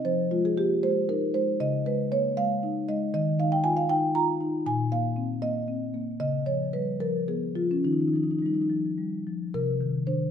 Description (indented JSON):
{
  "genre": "classical, contemporary piece for solo marimba",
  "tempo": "70-80 BPM (dotted quarters)",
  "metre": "6/8",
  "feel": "rubato",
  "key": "Eb major",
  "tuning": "A4 = 440 Hz",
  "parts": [
    { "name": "marimba with soft mallets", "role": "solo", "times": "0.0-10.3 s", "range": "Bb2 to Bb5", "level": "-24 LUFS", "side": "equal", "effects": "none" }
  ],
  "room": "wet recital hall reverb, RT60 1.4 s",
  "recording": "none",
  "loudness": "-24 LUFS",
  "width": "side -8 dB against mid",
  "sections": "0.0-9.5 A section",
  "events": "none",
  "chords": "0.1 Fm7; 1.6 Dbadd9; 3.1 Ebsus2; 4.7 Bbsus24; 6.2 Db7; 7.8 Ebadd9; 9.5 Cmadd9"
}